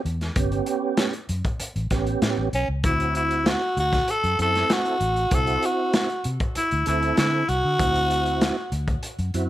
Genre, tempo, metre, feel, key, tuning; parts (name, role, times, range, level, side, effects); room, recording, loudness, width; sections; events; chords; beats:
straight-eighth soul blues; 97 BPM; 4/4; straight; A4 = 437 Hz
vintage muted fingered electric bass; bass; 0.1-9.5 s; G1 to D3; -26 LUFS; equal
crunchy breakbeat drum kit; drums; 0.1-9.5 s; hi-hat, kick drum, snare drum; -25 LUFS; equal
tonewheel organ; accompaniment; 0.4-9.5 s; B3 to A4; -28 LUFS; right 5 dB; overdrive, chorus vibrato, slow rotary speaker, plate reverb
growling tenor saxophone; melody; 2.5-8.7 s; C#4 to A4; -23 LUFS; equal; plate reverb
moderate studio ambience, RT60 0.5 s; -21 LUFS; side -14 dB against mid
0.0-9.5 A section
0.0 A7; 2.8 D7
| 0.37 0.99 1.60 2.22 | 2.84 3.46 4.08 4.70 | 5.32 5.94 6.56 7.18 | 7.80 8.41 9.03